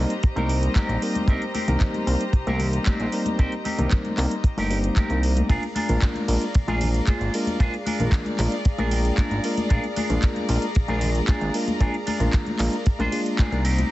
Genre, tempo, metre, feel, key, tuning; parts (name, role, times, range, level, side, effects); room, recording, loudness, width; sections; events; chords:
nu-disco, nu disco; 114 BPM; 4/4; straight; A4 = 437 Hz
mellow tine electric piano; accompaniment; 0.0-13.9 s; G3 to Bb4; -27 LUFS; equal; vintage 12-bit sampler grit, sidechain pumping, tape echo
rich chamber string section; sustained chords; 0.0-13.9 s; G4 to Bb5; -32 LUFS; left 1 dB; sidechain pumping
fat analog bass; bass; 0.0-13.8 s; G1 to C2; -24 LUFS; equal; tube saturation
electric guitar with an envelope filter; riff; 0.1-13.9 s; C4 to G5; -31 LUFS; right 1 dB; lush chorus, tape echo
house drum kit; drums; 0.1-13.9 s; handclaps, hi-hat, ride cymbal; -34 LUFS; right 1 dB
kick drum; drums; 0.2-13.5 s; -19 LUFS; equal
congas; percussion; 0.4-13.9 s; -31 LUFS; left 3 dB
light reverb, small room ambience; heavily compressed radio sound, multiband compression, nothing above 8.0 kHz; -20 LUFS; side -16 dB against mid
0.0-13.9 A section
clean electric guitar fill 8.7-9.7
0.0 Cm7; 5.5 Bb7